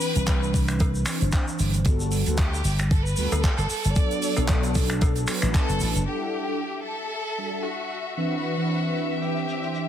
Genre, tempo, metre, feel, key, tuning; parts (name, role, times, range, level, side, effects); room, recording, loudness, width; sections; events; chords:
nu-disco, nu disco; 114 BPM; 4/4; swing 56% on 16ths; E minor; A4 = 440 Hz
rich chamber violin section; melody; 0.0-9.9 s; F#4 to D5; -31 LUFS; equal; dub echo
mellow synth brass; accompaniment; 0.0-9.9 s; E3 to F#5; -28 LUFS; right 1 dB; chorus, sidechain pumping, digital delay
tight funk drum kit; drums; 0.0-9.9 s; finger snaps, handclaps, hi-hat, shaker; -30 LUFS; right 1 dB; low-pass filter on hats, low-pass filter on perc, low-pass filter on snare, low-pass filter on room
slap bass; bass; 0.2-6.0 s; F#1 to D2; -24 LUFS; equal
electronic kick drum; drums; 0.3-5.7 s; -22 LUFS; equal; overdrive
cowbell; percussion; 0.8-5.1 s; -35 LUFS; equal
warm symphonic string section; sustained chords; 6.1-9.9 s; E5; -34 LUFS; left 4 dB; sidechain pumping
light reverb; dense, heavily limited modern master; -22 LUFS; side -10 dB against mid
0.0-6.1 A section; 6.1-9.9 B section
filter sweep on analog polysynth 0.0-6.1
0.0 Cmaj9; 1.9 Gmaj9; 4.0 Bm7; 6.1 Em11; 8.2 Cmaj9